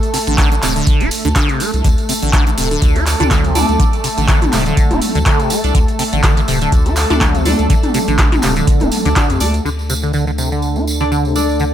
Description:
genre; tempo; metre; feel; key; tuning
acid house; 123 BPM; 4/4; swing 56% on 16ths; unclear; A4 = 439 Hz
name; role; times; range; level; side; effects
lush unison pad; sustained chords; 0.0-11.7 s; A3 to A4; -22 LUFS; equal; chorus, sidechain pumping
electro analog drum machine; drums; 0.0-9.8 s; crash cymbal, handclaps, hi-hat, toms; -18 LUFS; equal; overdrive, low-pass filter on hats, low-pass filter on snare, low-pass filter on toms, low-pass filter on cymbals, low-pass filter on room
tambourine; percussion; 0.0-11.7 s; none; -26 LUFS; right 3 dB; none
liquid acid bass; riff; 0.1-11.6 s; C3 to F4; -19 LUFS; equal; phaser, tube saturation, analog chorus, digital delay
saturated sub bass; bass; 0.3-11.7 s; D1 to F2; -18 LUFS; equal; sidechain pumping
electronic kick drum; drums; 0.4-9.3 s; none; -14 LUFS; equal; none
band-passed chord stab; stabs; 3.2-11.7 s; D4 to D5; -24 LUFS; right 2 dB; phaser, digital delay
warbly tape-like pad; texture; 10.1-11.7 s; D4 to A5; -22 LUFS; left 2 dB; chorus, built-in reverb, phaser, sidechain pumping
room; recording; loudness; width
light reverb; none; -12 LUFS; side -10 dB against mid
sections
0.0-9.7 A section; 9.7-11.7 B section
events
filter sweep on analog synth pad 9.7-11.7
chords
0.0 D5

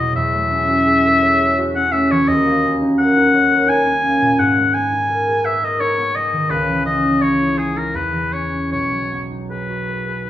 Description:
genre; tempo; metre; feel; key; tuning
classical, impressionist duo for oboe and harp; 85 BPM; 3/4; rubato; B major; A4 = 438 Hz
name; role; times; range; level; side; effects
clear oboe; melody; 0.0-10.3 s; G#4 to G#5; -17 LUFS; left 2 dB; none
concert harp; accompaniment; 0.0-10.3 s; B1 to C#5; -18 LUFS; right 1 dB; none
room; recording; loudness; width
moderate recital hall reverb, RT60 1.4 s; minimal, uncompressed stereo recording; -14 LUFS; side -12 dB against mid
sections
0.0-10.3 A section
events
none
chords
0.2 F#m9/E; 2.3 D#m7; 4.4 G#madd9; 6.5 C#m9; 7.9 E5; 8.7 B6

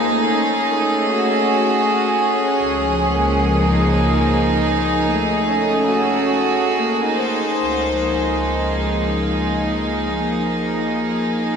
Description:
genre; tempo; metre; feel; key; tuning
ambient; 72 BPM; 3/4; straight; Db major; A4 = 440 Hz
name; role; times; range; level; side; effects
bright chamber string section; sustained chords; 0.0-11.6 s; Db2 to C5; -16 LUFS; equal; none
drifting glass-harmonics texture; texture; 0.0-7.6 s; Eb6; -30 LUFS; left 1 dB; none
room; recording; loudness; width
wet shimmer reverb, RT60 7.6 s; dark, warm production; -16 LUFS; side -6 dB against mid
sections
0.0-7.6 A section; 7.6-11.6 B section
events
none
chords
0.1 Gbmadd9; 2.6 Db; 5.1 Gbmadd9; 6.8 Ab7; 7.6 Db; 10.1 Fm

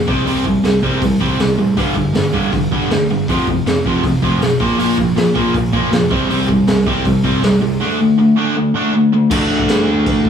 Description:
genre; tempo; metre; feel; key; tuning
punk rock; 159 BPM; 4/4; straight; unclear; A4 = 441 Hz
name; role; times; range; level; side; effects
biting overdriven guitar; riff; 0.0-10.3 s; F2 to D4; -19 LUFS; left 10 dB; none
crunchy overdriven guitar; riff; 0.0-10.3 s; F2 to D4; -16 LUFS; right 4 dB; none
fuzz picked electric bass; bass; 0.0-10.3 s; F1 to Bb2; -23 LUFS; equal; overdrive
raw garage drum kit; drums; 0.1-10.3 s; crash cymbal, hi-hat, kick drum, snare drum; -19 LUFS; equal; none
room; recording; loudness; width
moderate studio reverb, RT60 0.6 s; band playing live in one room, small room reverb; -13 LUFS; side -8 dB against mid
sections
0.0-9.3 A section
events
none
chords
0.1 C5; 1.8 G5; 3.3 F5; 4.6 Bb5; 6.1 C5; 7.8 D5

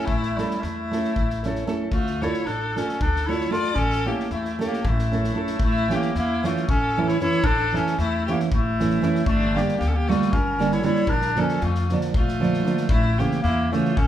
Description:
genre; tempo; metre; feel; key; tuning
balkan folk, Balkan wedding band; 230 BPM (eighths); 7/8; straight; A phrygian dominant; A4 = 445 Hz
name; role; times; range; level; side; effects
mellow clarinet; melody; 0.0-14.1 s; G3 to F4; -25 LUFS; left 1 dB; none
rich violin; second line; 0.0-14.1 s; D4 to D5; -30 LUFS; left 4 dB; none
nylon-string guitar; accompaniment; 0.0-13.9 s; C#3 to A4; -25 LUFS; right 4 dB; none
upright bass; bass; 0.1-14.1 s; G1 to F2; -28 LUFS; left 1 dB; none
unplugged drum kit; percussion; 0.1-14.1 s; kick drum, snare drum; -28 LUFS; left 1 dB; none
room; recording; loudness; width
moderate large studio reverb, RT60 1.2 s; band playing live in one room; -20 LUFS; side -11 dB against mid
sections
0.0-5.6 A section; 5.6-14.1 B section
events
none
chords
0.0 A; 1.9 Dm; 3.8 A; 9.3 Gm; 11.1 Bb; 12.9 A

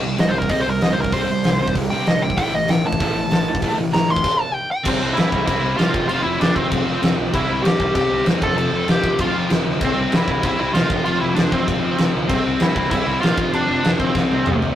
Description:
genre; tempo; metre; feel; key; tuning
punk rock; 194 BPM; 4/4; straight; C major; A4 = 440 Hz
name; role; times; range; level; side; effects
biting overdriven guitar; riff; 0.0-14.8 s; F2 to C4; -22 LUFS; equal; none
fuzz picked electric bass; bass; 0.0-14.7 s; F1 to Bb2; -28 LUFS; equal; overdrive
dark smooth lead guitar; melody; 0.2-14.6 s; C4 to C6; -21 LUFS; left 1 dB; overdrive
big rock drum kit; drums; 0.2-14.7 s; crash cymbal, hi-hat, kick drum, snare drum, toms; -20 LUFS; equal; none
room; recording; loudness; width
light reverb; rough rehearsal-room recording, tube saturation; -16 LUFS; side -11 dB against mid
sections
0.0-4.9 A section; 4.9-14.8 B section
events
lead electric guitar solo 0.0-4.9; stop 4.2-4.9; drum fill 14.2-14.8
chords
0.0 C5; 2.4 A5; 4.9 C; 5.9 F5; 7.3 C; 8.4 F; 9.8 C; 10.9 F5; 12.3 C; 13.4 F5; 14.2 C5

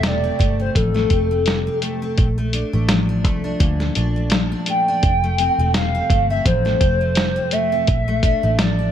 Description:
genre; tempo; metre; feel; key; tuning
indie pop, bedroom pop; 84 BPM; 4/4; swing 55% on 16ths; F major; A4 = 440 Hz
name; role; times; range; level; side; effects
hollow clarinet-like synth lead; melody; 0.0-8.9 s; A4 to G5; -20 LUFS; equal; wide subtle chorus
picked steel-string acoustic guitar; accompaniment; 0.0-8.9 s; F2 to A4; -24 LUFS; left 3 dB; lush chorus, vibrato effect
vintage muted picked electric bass; bass; 0.0-8.9 s; E1 to D2; -21 LUFS; equal; none
lo-fi sampler-style drum kit; drums; 0.0-8.8 s; hi-hat, kick drum, snare drum; -20 LUFS; equal; none
room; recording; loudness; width
light reverb, digital ambience; none; -16 LUFS; side -10 dB against mid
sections
0.0-8.9 A section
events
none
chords
0.0 Fmaj7; 2.2 Bbmaj7; 5.0 Fmaj7; 7.9 Bbmaj7

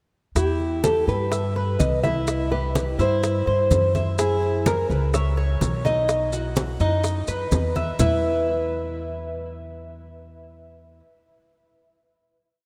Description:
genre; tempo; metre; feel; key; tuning
latin, Cuban son and guajira; 126 BPM; 4/4; straight; E harmonic minor; A4 = 439 Hz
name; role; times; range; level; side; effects
nylon-string guitar; melody; 0.4-11.0 s; G4 to E5; -28 LUFS; equal; subtle chorus, diffuse ambient delay
Cuban tres; arpeggios; 0.4-11.0 s; D#4 to E5; -29 LUFS; equal; diffuse ambient delay
upright bass; bass; 0.4-11.0 s; B1 to G2; -27 LUFS; equal; none
bongos; percussion; 0.4-8.1 s; none; -36 LUFS; equal; none
congas; percussion; 0.4-8.1 s; none; -30 LUFS; equal; none
maracas; percussion; 0.4-8.1 s; none; -40 LUFS; equal; none
room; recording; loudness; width
moderate huge ambient reverb, RT60 4.3 s; dreamy mix soaked in reverb; -23 LUFS; mono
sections
0.4-8.0 verse; 8.0-11.8 final chord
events
drum fill 7.8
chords
0.4 Em; 2.3 C; 4.2 F#7; 6.1 B; 8.0 E5

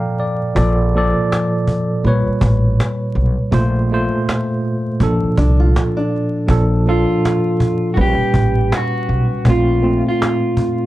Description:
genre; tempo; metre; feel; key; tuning
lo-fi hip hop; 81 BPM; 4/4; swing 60% on 16ths; Bb major; A4 = 440 Hz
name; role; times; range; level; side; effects
tine electric piano; accompaniment; 0.0-10.9 s; Bb2 to Bb5; -17 LUFS; equal; medium stereo tremolo, cassette tape
upright bass; bass; 0.6-10.0 s; A1 to C2; -17 LUFS; equal; none
cajon; drums; 0.6-10.8 s; none; -20 LUFS; equal; vintage 12-bit sampler grit
nylon-string guitar; second line; 5.4-6.5 s; D4 to F4; -23 LUFS; right 1 dB; analog delay
electric guitar at the edge of break-up; melody; 6.9-10.9 s; F4 to G4; -19 LUFS; right 1 dB; none
room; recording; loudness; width
light reverb; dark, warm production, vinyl crackle; -14 LUFS; side -16 dB against mid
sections
0.0-10.9 A section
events
tine electric piano fill 0.0-0.6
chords
0.0 Bbmaj7; 2.0 A7; 3.5 Fadd11/Bb; 5.0 Bbmaj9; 6.5 Bbmaj7; 8.0 A7; 9.5 Fadd11/Bb

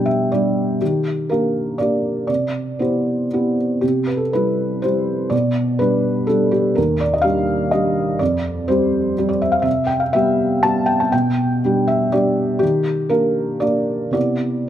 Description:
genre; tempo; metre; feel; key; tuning
neoclassical minimalist piano; 109-127 BPM; 3/4; rubato; C major; A4 = 439 Hz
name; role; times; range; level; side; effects
felt-muted upright piano; solo; 0.0-14.7 s; Eb2 to A5; -16 LUFS; equal; none
room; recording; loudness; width
light reverb; close, detailed microphones; -16 LUFS; side -11 dB against mid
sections
0.0-3.8 A section; 3.8-14.7 A section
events
none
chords
0.0 G/B; 0.8 Ebmaj7; 2.3 Cmaj7; 5.3 G/B; 6.8 Ebmaj7; 8.2 Fsus2; 9.7 Cmaj7; 11.1 G/B; 12.6 Ebmaj7; 14.2 Cmaj7

